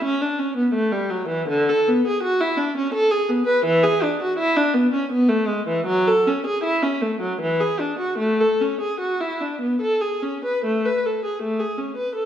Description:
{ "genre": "classical, baroque-style suite movement for unaccompanied viola", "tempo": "70-86 BPM", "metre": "3/4", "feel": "rubato", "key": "A major", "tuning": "A4 = 440 Hz", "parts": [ { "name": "warm viola", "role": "solo", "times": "0.0-12.3 s", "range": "D3 to B4", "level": "-19 LUFS", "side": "equal", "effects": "none" } ], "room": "moderate recital hall reverb, RT60 1.4 s", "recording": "recorded in a church or concert hall", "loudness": "-19 LUFS", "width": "side -10 dB against mid", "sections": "0.0-10.6 A section; 10.6-12.3 B section", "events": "none", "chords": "none", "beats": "0.04 0.74 | 1.49 2.23 2.94 | 3.66 4.38 5.10 | 5.85 6.62 7.39 | 8.18 8.99 9.80 | 10.64 11.42 12.15" }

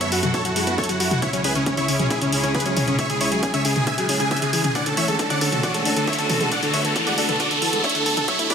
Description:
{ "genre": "uplifting trance", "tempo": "136 BPM", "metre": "4/4", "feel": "straight", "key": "unclear", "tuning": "A4 = 439 Hz", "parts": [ { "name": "big supersaw lead", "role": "melody", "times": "0.0-8.5 s", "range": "C#4 to G#5", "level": "-23 LUFS", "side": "right 1 dB", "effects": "sidechain pumping, dub echo" }, { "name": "warm studio string section", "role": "sustained chords", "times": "0.0-8.5 s", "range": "C#2 to A4", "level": "-27 LUFS", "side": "right 1 dB", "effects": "sidechain pumping" }, { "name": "analog pluck", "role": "arpeggios", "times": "0.0-8.5 s", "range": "C#3 to F#4", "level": "-26 LUFS", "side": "left 3 dB", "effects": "chorus, cassette tape, sidechain pumping, dub echo" }, { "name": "punchy analog drum machine", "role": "drums", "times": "0.0-8.5 s", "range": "hi-hat, toms", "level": "-26 LUFS", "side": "left 1 dB", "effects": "none" }, { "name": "riser", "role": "sound effects", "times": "0.0-8.5 s", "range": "none", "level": "-28 LUFS", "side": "equal", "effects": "none" }, { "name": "electronic kick drum", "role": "drums", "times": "0.3-8.5 s", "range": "none", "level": "-30 LUFS", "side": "right 1 dB", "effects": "high-pass filter on kick, high-pass filter on room" } ], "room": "moderate concert hall reverb, RT60 1.8 s", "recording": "dense, heavily limited modern master, high-pass filter", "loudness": "-18 LUFS", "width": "side -7 dB against mid", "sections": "0.0-8.5 A section", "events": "build-up 0.0-8.5; riser 0.0-8.5; filter sweep on synth pluck 0.0-8.5; drum fill 4.8-8.5", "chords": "0.0 F#m7; 1.2 C#m; 4.8 Dmaj7", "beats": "0.34 0.78 | 1.22 1.66 2.10 2.55 | 2.99 3.43 3.87 4.31 | 4.75 5.19 5.63 6.08 | 6.52 6.96 7.40 7.84 | 8.28" }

